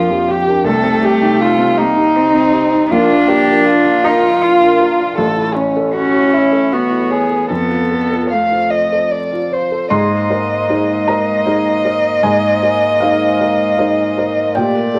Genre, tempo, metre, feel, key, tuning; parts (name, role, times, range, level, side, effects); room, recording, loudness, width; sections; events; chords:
neoclassical piano and strings; 78 BPM; 3/4; rubato; A4 = 440 Hz
dark violin; melody; 0.0-15.0 s; C#4 to F5; -17 LUFS; equal
warm cello; second line; 0.0-15.0 s; F3 to F4; -20 LUFS; equal
felt-muted upright piano; accompaniment; 0.0-15.0 s; A1 to C6; -20 LUFS; equal
vibraphone with medium mallets; arpeggios; 0.0-15.0 s; C4 to Bb5; -27 LUFS; equal
moderate large studio reverb, RT60 1.1 s; vinyl crackle; -14 LUFS; mono
0.0-9.9 A section; 9.9-15.0 B section
0.0 Gm7/Bb; 0.7 Cm; 2.9 Bb; 5.2 A; 7.5 F; 9.9 Abadd9